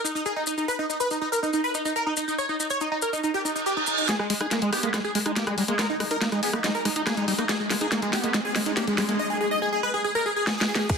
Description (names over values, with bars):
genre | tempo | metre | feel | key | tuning
psychedelic trance | 141 BPM | 4/4 | straight | G# harmonic minor | A4 = 437 Hz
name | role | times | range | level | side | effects
supersaw stab | melody | 0.0-11.0 s | G#3 to D#5 | -26 LUFS | equal | phaser, sidechain pumping, ping-pong delay
maracas | percussion | 0.1-4.1, 10.9-11.0 s | none | -32 LUFS | left 4 dB | none
reverse cymbal, riser and downlifter | sound effects | 3.5-11.0 s | none | -33 LUFS | right 3 dB | none
drum and bass drum kit | drums | 4.1-11.0 s | crash cymbal, hi-hat, rim click, snare drum | -27 LUFS | equal | overdrive, low-pass filter on snare, low-pass filter on hats, low-pass filter on cymbals
screaming distorted acid line | riff | 4.3-9.1 s | G3 to D#4 | -29 LUFS | moving between left 4 dB and right 3 dB | distortion, chorus, auto-pan, sidechain pumping, ping-pong delay
metallic wobble bass | second line | 4.7-9.2 s | G#3 to B3 | -38 LUFS | right 3 dB | none
electronic kick drum | drums | 10.9-11.0 s | none | -23 LUFS | equal | none
room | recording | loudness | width
moderate plate reverb, RT60 2.4 s | dense, heavily limited modern master | -23 LUFS | side -5 dB against mid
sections
0.0-4.1 A section; 4.1-10.9 B section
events
reverse cymbal 3.5-4.1; build-up 4.1-10.9; drum fill 4.1-9.2, 10.5-10.9; filter sweep on acid bass 4.1-10.9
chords
0.0 N.C.; 4.1 G#5